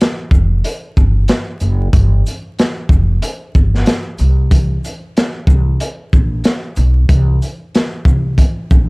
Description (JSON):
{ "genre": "hip hop, boom-bap hip-hop", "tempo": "93 BPM", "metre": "4/4", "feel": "swing 59% on 16ths", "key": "unclear", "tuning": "A4 = 442 Hz", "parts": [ { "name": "crunchy breakbeat drum kit", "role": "drums", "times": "0.0-8.9 s", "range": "hi-hat, kick drum, shaker, snare drum", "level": "-13 LUFS", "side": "equal", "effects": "none" }, { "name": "upright bass", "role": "bass", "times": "0.3-8.9 s", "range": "F1 to C2", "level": "-14 LUFS", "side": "equal", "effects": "none" } ], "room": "little or no reverb", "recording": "dark, warm production, vinyl crackle", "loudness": "-12 LUFS", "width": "side -30 dB against mid", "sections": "0.0-8.9 A section", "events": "none", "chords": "none" }